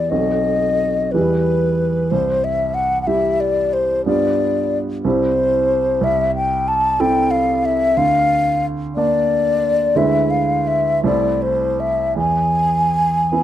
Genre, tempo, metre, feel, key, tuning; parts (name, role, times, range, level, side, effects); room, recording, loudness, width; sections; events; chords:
classical, romantic duo for flute and grand piano; 52-62 BPM (dotted quarters); 6/8; rubato; A minor from 6.0 s; A4 = 439 Hz
mellow hollow concert flute; melody; 0.0-13.4 s; B4 to A5; -17 LUFS; left 2 dB
warm baby grand piano; accompaniment; 0.0-13.4 s; B1 to D5; -19 LUFS; right 2 dB
light reverb; close, detailed microphones; -15 LUFS; side -11 dB against mid
0.0-13.4 A section
0.1 B7b9; 1.1 Em; 2.1 C; 4.1 G7; 5.0 C; 6.0 Am/C; 8.0 Bb/D; 10.0 E7/D; 11.0 Am/C; 12.2 E